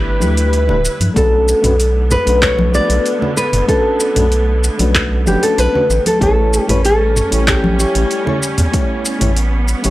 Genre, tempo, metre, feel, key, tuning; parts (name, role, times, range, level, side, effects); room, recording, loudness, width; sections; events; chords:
sunset chillout; 95 BPM; 4/4; straight; A4 = 440 Hz
nylon-string guitar; melody; 0.0-9.9 s; G4 to D5; -16 LUFS; left 1 dB; analog delay
mellow FM electric piano; accompaniment; 0.0-9.9 s; A3 to C#5; -21 LUFS; left 1 dB; chorus, auto-pan, tape echo
warm symphonic string section; sustained chords; 0.0-9.9 s; D3 to B4; -24 LUFS; right 2 dB
round analog bass; bass; 0.0-9.9 s; D1 to G2; -16 LUFS; equal
deep house drum kit; drums; 0.2-9.9 s; handclaps, hi-hat, shaker, toms; -19 LUFS; equal; studio reverb
congas; percussion; 0.2-9.9 s; -22 LUFS; left 1 dB
electronic kick drum; drums; 1.2-8.9 s; -19 LUFS; equal; studio reverb
little or no reverb; dry, gritty hardware recording, transformer saturation; -12 LUFS; side -16 dB against mid
0.0-9.9 A section
0.0 G69; 1.2 Bm9; 6.2 A7